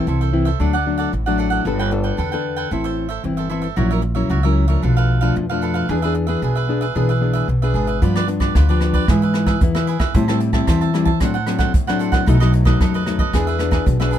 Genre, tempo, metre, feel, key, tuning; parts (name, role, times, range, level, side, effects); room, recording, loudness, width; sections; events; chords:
samba and choro; 113 BPM; 4/4; straight; A minor; A4 = 440 Hz
cavaquinho; accompaniment; 0.0-14.2 s; D4 to A5; -25 LUFS; right 8 dB
nylon-string guitar; accompaniment; 0.0-14.2 s; F#2 to A4; -21 LUFS; left 4 dB
upright bass; bass; 0.1-14.2 s; G1 to A2; -19 LUFS; equal
jazz brush drum kit; drums; 8.0-14.2 s; hi-hat, kick drum, rim click; -20 LUFS; right 1 dB
light reverb; minimal, uncompressed stereo recording; -16 LUFS; side -10 dB against mid
0.0-14.2 A section
0.0 Am; 0.6 D; 1.7 Gadd9; 2.7 Am; 3.8 F#7/A#; 4.8 Bm7b5; 5.9 E7; 8.0 G7; 9.1 E/G#; 10.1 Am7; 11.2 D7/A; 12.3 B7; 13.3 E7